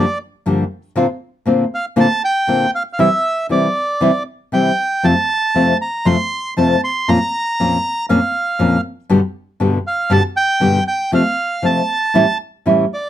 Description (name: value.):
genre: tango.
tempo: 118 BPM.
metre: 4/4.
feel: rubato.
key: F major.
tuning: A4 = 439 Hz.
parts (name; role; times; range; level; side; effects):
bandoneon; melody; 0.0-13.1 s; D5 to C6; -17 LUFS; right 2 dB; none.
nylon-string guitar; accompaniment; 0.0-12.8 s; F2 to G4; -14 LUFS; left 1 dB; none.
room: light reverb.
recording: close, detailed microphones.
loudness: -14 LUFS.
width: side -11 dB against mid.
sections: 0.0-13.1 A section.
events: none.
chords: 0.0 Gm7; 1.0 Bbadd9; 3.0 C; 5.0 F; 7.1 Bbm/F; 9.1 G; 11.1 F/C; 12.1 A7.